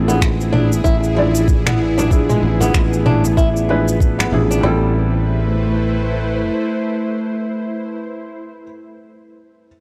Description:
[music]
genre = organic downtempo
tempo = 95 BPM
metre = 4/4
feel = swing 58% on 16ths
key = A minor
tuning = A4 = 440 Hz
[part]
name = felt-muted upright piano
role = accompaniment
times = 0.0-9.7 s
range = F3 to D5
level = -25 LUFS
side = equal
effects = sidechain pumping, analog delay
[part]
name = bowed-like drone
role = sustained chords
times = 0.0-7.9 s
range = A3 to C5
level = -24 LUFS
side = equal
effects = built-in reverb, sidechain pumping
[part]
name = sustaining fretless electric bass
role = bass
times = 0.0-6.5 s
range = A1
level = -21 LUFS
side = equal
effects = sidechain pumping
[part]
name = flamenco guitar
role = arpeggios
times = 0.1-4.9 s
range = G3 to E4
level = -25 LUFS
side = equal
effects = analog delay
[part]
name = organic electronic drum kit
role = drums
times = 0.1-4.6 s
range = finger snaps, shaker, toms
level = -23 LUFS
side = equal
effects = none
[part]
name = organic electronic drum kit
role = drums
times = 0.2-4.8 s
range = kick drum, snare drum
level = -18 LUFS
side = equal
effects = none
[part]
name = frame drum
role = percussion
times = 2.0-4.3 s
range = none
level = -29 LUFS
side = equal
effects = none
[sound]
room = light reverb, digital ambience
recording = dry, gritty hardware recording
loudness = -17 LUFS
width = mono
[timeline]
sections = 0.0-4.6 A section; 4.6-7.2 B section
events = none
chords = 0.0 E7b9/A; 4.6 Am7

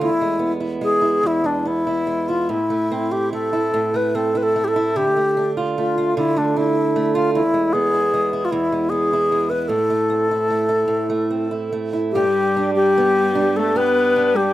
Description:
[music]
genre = celtic folk, Celtic slow air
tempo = 74 BPM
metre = 3/4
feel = uneven beats, rubato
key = A minor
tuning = A4 = 440 Hz
[part]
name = bright alto flute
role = melody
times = 0.0-14.5 s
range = D4 to B4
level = -18 LUFS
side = left 1 dB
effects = slapback echo
[part]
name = fingerpicked acoustic archtop guitar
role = accompaniment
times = 0.0-14.5 s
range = E2 to G4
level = -22 LUFS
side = right 4 dB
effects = slapback echo
[part]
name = warm viola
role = second line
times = 12.1-14.5 s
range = G3 to B3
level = -24 LUFS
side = left 3 dB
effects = slapback echo
[sound]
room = little or no reverb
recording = recorded outdoors, with no room sound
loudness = -17 LUFS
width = side -14 dB against mid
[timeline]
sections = 0.0-12.1 A section; 12.1-14.5 B section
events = none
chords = 0.0 E; 2.5 Am; 5.0 Dm; 7.3 E; 9.7 Am; 12.1 G

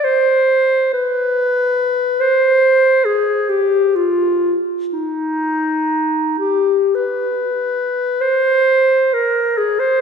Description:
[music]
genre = classical, free, expressive piece for unaccompanied clarinet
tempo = 27-48 BPM (dotted quarters)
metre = 6/8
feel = rubato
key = unclear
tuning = A4 = 443 Hz
[part]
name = mellow clarinet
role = solo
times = 0.0-10.0 s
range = Eb4 to C5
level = -14 LUFS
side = equal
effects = none
[sound]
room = wet concert hall reverb, RT60 2.3 s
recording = recorded in a church or concert hall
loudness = -14 LUFS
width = side -6 dB against mid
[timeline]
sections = 0.0-8.2 A section; 8.2-10.0 A section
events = none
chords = none

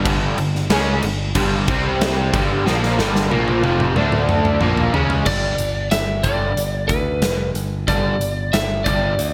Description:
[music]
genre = hard rock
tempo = 92 BPM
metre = 4/4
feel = straight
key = unclear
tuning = A4 = 440 Hz
[part]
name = overdriven electric guitar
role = riff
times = 0.0-5.3 s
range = F2 to D4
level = -25 LUFS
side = equal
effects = ensemble chorus
[part]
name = overdriven semi-hollow guitar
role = riff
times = 0.0-9.1 s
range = F2 to D4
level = -24 LUFS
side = equal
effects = ensemble chorus
[part]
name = modern bright picked electric bass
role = bass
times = 0.0-9.3 s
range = F1 to D2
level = -25 LUFS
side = equal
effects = none
[part]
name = big rock drum kit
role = drums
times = 0.1-9.3 s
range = crash cymbal, hi-hat, kick drum, snare drum, toms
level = -24 LUFS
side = equal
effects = gated reverb
[part]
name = lightly driven lead guitar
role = melody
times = 5.3-9.3 s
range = B4 to E5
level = -25 LUFS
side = equal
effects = none
[sound]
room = moderate plate reverb, RT60 1.6 s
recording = bright 1980s-style digital production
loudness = -19 LUFS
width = mono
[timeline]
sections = 0.0-5.3 A section; 5.3-9.3 B section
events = drum fill 2.7-5.3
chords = 0.0 G5; 1.7 C5; 2.3 G5; 4.0 D5; 4.6 Bbm7; 5.3 G5

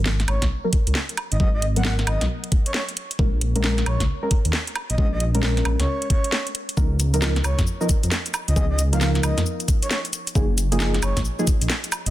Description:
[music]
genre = UK garage, two-step garage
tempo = 134 BPM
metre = 4/4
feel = swing 63% on 16ths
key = unclear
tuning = A4 = 440 Hz
[part]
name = deep mellow chord stab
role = stabs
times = 0.0-11.4 s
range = E#3 to A#4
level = -28 LUFS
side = equal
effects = chorus, tape echo
[part]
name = dark detuned saw bass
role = bass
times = 0.0-12.1 s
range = F#1 to E#2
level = -22 LUFS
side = equal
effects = sidechain pumping
[part]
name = garage drum kit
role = drums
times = 0.1-12.1 s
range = cabasa, hi-hat, snare drum, woodblock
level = -26 LUFS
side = equal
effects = small room reverb
[part]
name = breathy flute-like synth lead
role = melody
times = 0.3-12.1 s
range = C#5 to F#5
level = -32 LUFS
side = equal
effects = chorus, tape echo
[part]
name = electronic kick drum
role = drums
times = 0.4-11.6 s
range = none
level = -21 LUFS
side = equal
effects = small room reverb
[sound]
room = little or no reverb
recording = dense, heavily limited modern master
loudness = -19 LUFS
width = side -15 dB against mid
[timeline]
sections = 0.0-12.1 A section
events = filter sweep on synth stab 0.0-12.1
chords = 0.0 G#m9; 3.0 A#m7; 6.8 C#13; 10.4 F#maj13

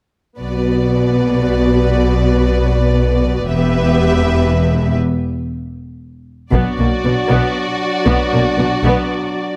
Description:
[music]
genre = cinematic, epic orchestral film score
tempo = free time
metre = none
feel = none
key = B minor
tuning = A4 = 440 Hz
[part]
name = warm symphonic violin section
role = second line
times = 0.4-9.6 s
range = F#4 to E5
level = -23 LUFS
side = equal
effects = none
[part]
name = warm studio viola section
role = accompaniment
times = 0.4-9.1 s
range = A#3 to G4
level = -22 LUFS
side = equal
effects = none
[part]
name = clear symphonic double bass section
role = bass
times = 0.4-8.9 s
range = E1 to B1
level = -20 LUFS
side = equal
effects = none
[part]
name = warm chamber cello section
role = bass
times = 0.4-8.9 s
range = E2 to B2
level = -21 LUFS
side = equal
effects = none
[part]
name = warm symphonic violin section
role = melody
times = 6.5-9.6 s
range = D5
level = -27 LUFS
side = equal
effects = none
[part]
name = mellow French horn section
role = sustained chords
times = 6.5-9.6 s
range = F#3 to D4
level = -24 LUFS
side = equal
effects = none
[part]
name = taiko ensemble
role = drums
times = 6.5-7.5 s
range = none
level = -22 LUFS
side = equal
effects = none
[sound]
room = light reverb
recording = close, detailed microphones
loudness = -15 LUFS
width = mono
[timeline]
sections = 0.4-6.5 A section; 6.5-9.6 B section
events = break 5.0-6.5; build-up 6.5-9.6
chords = 0.4 Bm; 3.5 Em; 5.0 N.C.; 6.5 Bm

